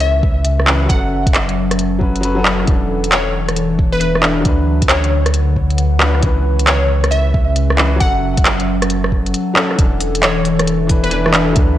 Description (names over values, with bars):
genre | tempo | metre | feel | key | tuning
future garage | 135 BPM | 4/4 | swing 65% on 16ths | unclear | A4 = 440 Hz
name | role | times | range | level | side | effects
glassy wavetable pluck | melody | 0.0-11.2 s | B4 to F#5 | -21 LUFS | left 1 dB | chorus, tape echo
bright upright piano | accompaniment | 0.0-11.8 s | E3 to B4 | -24 LUFS | left 2 dB | sidechain pumping, analog delay
warbly tape-like pad | sustained chords | 0.0-11.8 s | C#3 to F#5 | -20 LUFS | left 2 dB | chorus, built-in reverb, sidechain pumping
soft dub sub bass | bass | 0.0-11.8 s | E1 to D2 | -18 LUFS | equal | sidechain pumping
organic electronic drum kit | drums | 0.0-11.7 s | handclaps, hi-hat, rim click | -17 LUFS | right 1 dB | none
electronic kick drum | drums | 0.2-11.7 s | none | -15 LUFS | equal | none
room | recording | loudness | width
light reverb | dry, gritty hardware recording | -12 LUFS | side -12 dB against mid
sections
0.0-9.8 A section; 9.8-11.8 B section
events
none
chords
0.0 C#m7; 0.9 F#m; 2.7 E7sus4; 4.5 D6; 6.2 C#m7; 8.0 F#m; 9.8 E7sus4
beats
0.01 0.45 | 0.90 1.34 1.78 2.23 | 2.67 3.12 3.56 4.01 | 4.45 4.89 5.34 5.78 | 6.23 6.67 7.12 7.56 | 8.01 8.45 8.89 9.34 | 9.78 10.23 10.67 11.12 | 11.56